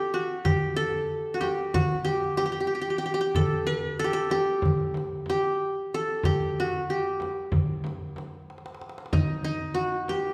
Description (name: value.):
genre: Turkish makam ensemble.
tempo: 187 BPM (eighths).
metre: 9/8.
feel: straight.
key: unclear.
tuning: A4 = 440 Hz.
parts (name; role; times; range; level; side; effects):
qanun; melody; 0.0-10.3 s; Eb4 to B4-40c; -29 LUFS; equal; none.
darbuka; percussion; 0.1-10.3 s; none; -33 LUFS; equal; none.
frame drum; percussion; 0.5-10.2 s; none; -34 LUFS; equal; none.
room: wet recital hall reverb, RT60 1.7 s.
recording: heard from further back in the room.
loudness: -27 LUFS.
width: mono.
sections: 0.0-10.3 A section.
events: drum fill 8.5-9.1.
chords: none.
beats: 0.13 | 0.45 0.78 1.10 1.42 1.74 2.06 2.38 2.71 3.03 | 3.35 3.67 3.99 4.31 4.63 4.96 5.28 5.60 5.92 | 6.24 6.56 6.88 7.21 7.53 7.85 8.17 8.49 8.81 | 9.13 9.45 9.77 10.10.